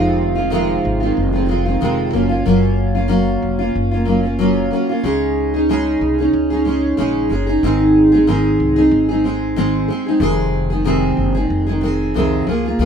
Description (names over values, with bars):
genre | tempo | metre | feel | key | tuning
acoustic pop | 93 BPM | 4/4 | swing 55% on 16ths | unclear | A4 = 440 Hz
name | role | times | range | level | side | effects
picked steel-string acoustic guitar | accompaniment | 0.0-12.9 s | F2 to Ab4 | -15 LUFS | right 1 dB | double-tracked left and right
upright bass | bass | 0.0-12.9 s | F1 to Db2 | -22 LUFS | equal | none
room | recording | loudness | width
light reverb | rough home demo mix | -14 LUFS | side -7 dB against mid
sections
0.0-12.9 A section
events
none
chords
0.0 Fm7; 2.1 Gbmaj7; 5.0 Dbsus2; 7.6 Ab; 10.2 Fm7